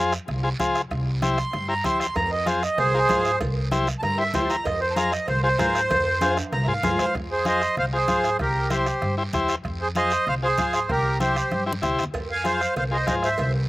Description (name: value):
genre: latin, cumbia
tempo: 192 BPM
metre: 4/4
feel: straight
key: F harmonic minor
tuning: A4 = 440 Hz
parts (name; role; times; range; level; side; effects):
- combo organ; accompaniment; 0.0-13.3 s; E4 to C5; -26 LUFS; left 2 dB; slapback echo
- upright bass; bass; 0.0-13.7 s; C2 to Ab2; -28 LUFS; equal; none
- bombo; percussion; 0.1-13.5 s; none; -34 LUFS; right 2 dB; slapback echo
- guiro; percussion; 0.1-13.7 s; none; -38 LUFS; right 3 dB; none
- congas; percussion; 0.3-13.5 s; none; -33 LUFS; left 2 dB; none
- accordion; melody; 1.4-13.5 s; G4 to C6; -23 LUFS; right 1 dB; slapback echo
- cowbell and timbales; percussion; 2.2-7.1, 12.1-13.5 s; none; -34 LUFS; right 3 dB; slapback echo
room: little or no reverb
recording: recorded outdoors, with no room sound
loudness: -21 LUFS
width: side -18 dB against mid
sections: 0.0-7.1 A section; 7.1-13.7 B section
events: accordion solo 0.0-7.1; drum fill 6.2-7.1, 11.5-12.1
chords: 0.0 Fm; 0.9 C; 2.2 Fm; 3.4 C; 4.7 Fm; 8.4 C7; 9.6 Fm; 10.9 C7; 12.1 Fm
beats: 0.28 0.60 | 0.91 1.22 1.53 1.85 | 2.16 2.47 2.78 3.09 | 3.41 3.72 4.03 4.34 | 4.65 4.96 5.28 5.59 | 5.90 6.21 6.52 6.84 | 7.15 7.46 7.77 8.08 | 8.40 8.71 9.02 9.33 | 9.64 9.96 10.27 10.58 | 10.89 11.20 11.52 11.83 | 12.14 12.45 12.76 13.08 | 13.39